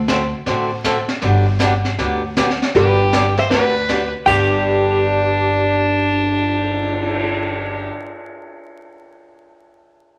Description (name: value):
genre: country, western swing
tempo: 158 BPM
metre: 4/4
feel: swing 65% on 8ths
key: G major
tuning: A4 = 439 Hz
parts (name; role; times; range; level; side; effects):
- upright bass; bass; 0.0-7.9 s; G1 to D2; -24 LUFS; equal; none
- picked swing-style acoustic guitar; accompaniment; 0.1-7.9 s; G2 to A4; -24 LUFS; equal; none
- jazz brush drum kit; drums; 0.1-7.2 s; brushed snare drum, crash cymbal, cymbal swell, hi-hat, kick drum, snare drum; -26 LUFS; equal; none
- hollow-body jazz guitar; melody; 2.8-7.9 s; G4 to G5; -21 LUFS; equal; none
- clear fiddle; second line; 2.8-7.9 s; D4 to C5; -22 LUFS; equal; none
- clean lap steel guitar; second line; 4.3-7.9 s; G4; -26 LUFS; equal; none
room: wet large studio reverb, RT60 0.8 s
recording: vinyl crackle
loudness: -17 LUFS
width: mono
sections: 0.0-2.7 A section; 2.7-4.3 B section; 4.3-7.3 C section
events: none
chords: 0.0 D7; 1.2 Gmaj7; 4.3 G